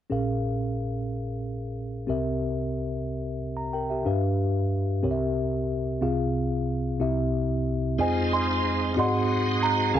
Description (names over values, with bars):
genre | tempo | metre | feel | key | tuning
slow gospel | 61 BPM (dotted quarters) | 6/8 | straight | F minor | A4 = 436 Hz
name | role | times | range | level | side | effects
mellow tine electric piano | accompaniment | 0.1-10.0 s | Bb1 to Bb5 | -25 LUFS | equal | slow stereo tremolo
celesta | melody | 8.0-10.0 s | C5 to C6 | -26 LUFS | right 1 dB | tape echo
bright tonewheel organ | sustained chords | 8.0-10.0 s | Ab3 to C5 | -29 LUFS | right 4 dB | slow rotary speaker, chorus vibrato
room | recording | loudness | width
moderate large studio reverb, RT60 1.1 s, small room ambience | dark, warm production | -24 LUFS | side -10 dB against mid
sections
0.1-8.0 A section; 8.0-10.0 B section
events
none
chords
0.1 Bbm7; 2.1 C7; 4.1 G7; 5.0 C7; 6.0 Fm/C; 7.0 C; 8.0 Fm7; 9.0 Ab7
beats
| 0.11 1.10 | 2.09 3.07 | 4.06 5.04 | 6.02 7.01 | 7.99 8.97 | 9.94